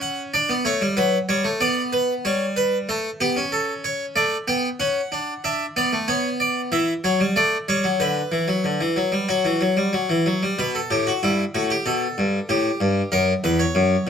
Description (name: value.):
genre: classical, baroque-style two-part invention for harpsichord.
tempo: 94 BPM.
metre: 4/4.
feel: straight.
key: D major, B minor from 5.4 s.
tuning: A4 = 442 Hz.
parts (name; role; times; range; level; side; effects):
harpsichord; solo; 0.0-14.1 s; E2 to G5; -19 LUFS; equal; none.
room: moderate stone room reverb, RT60 0.9 s.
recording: close, detailed microphones.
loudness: -19 LUFS.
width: side -7 dB against mid.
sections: 0.0-5.4 A section; 5.4-10.6 B section; 10.6-14.1 C section.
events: none.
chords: 0.3 D; 1.6 G; 2.9 A7; 4.2 D/A; 5.4 Bm; 6.7 C#dim/E; 8.0 Bm/D; 9.3 Emadd9; 10.6 B5; 11.9 Gadd9; 13.1 F#7.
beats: | 0.33 0.96 1.60 2.24 | 2.88 3.51 4.15 4.79 | 5.43 6.08 6.71 7.35 | 7.99 8.64 9.29 9.93 | 10.58 11.22 11.86 12.49 | 13.12 13.75.